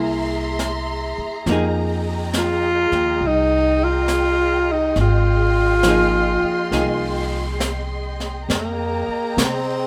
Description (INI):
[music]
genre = jazz ballad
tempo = 68 BPM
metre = 4/4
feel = swing 67% on 8ths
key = F minor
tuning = A4 = 440 Hz
[part]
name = hollow-body jazz guitar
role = accompaniment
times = 0.0-8.5 s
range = F3 to G#4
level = -27 LUFS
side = equal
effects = none
[part]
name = warm symphonic string section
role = sustained chords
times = 0.0-9.9 s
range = G#4 to C6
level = -30 LUFS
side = equal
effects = none
[part]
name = upright bass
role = bass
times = 0.0-9.9 s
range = Ab1 to C3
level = -26 LUFS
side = equal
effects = none
[part]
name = jazz brush drum kit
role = drums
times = 0.6-9.9 s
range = brushed snare drum, hi-hat, snare drum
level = -28 LUFS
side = equal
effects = none
[part]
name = breathy tenor saxophone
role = melody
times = 2.4-9.9 s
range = Bb3 to F4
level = -21 LUFS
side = equal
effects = none
[sound]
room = light reverb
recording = none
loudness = -20 LUFS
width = mono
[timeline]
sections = 0.0-8.5 A section; 8.5-9.9 B section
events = tenor saxophone solo 8.5-9.9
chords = 0.0 Caug7; 1.5 Fm11